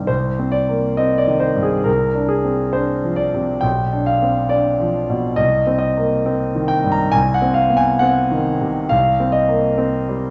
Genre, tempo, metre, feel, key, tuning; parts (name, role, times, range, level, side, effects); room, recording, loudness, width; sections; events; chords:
classical, romantic character piece for solo piano; 68 BPM; 2/4; rubato; C minor; A4 = 436 Hz
clear concert grand piano; solo; 0.0-10.3 s; B1 to Bb5; -18 LUFS; equal
wet large studio reverb, RT60 1.2 s; heard from further back in the room, nothing above 7.9 kHz; -18 LUFS; mono
0.1-10.3 A section
0.1 Cm; 1.9 Bb9/C; 3.6 Bdim; 5.4 Cm; 7.2 Cdim; 8.9 C5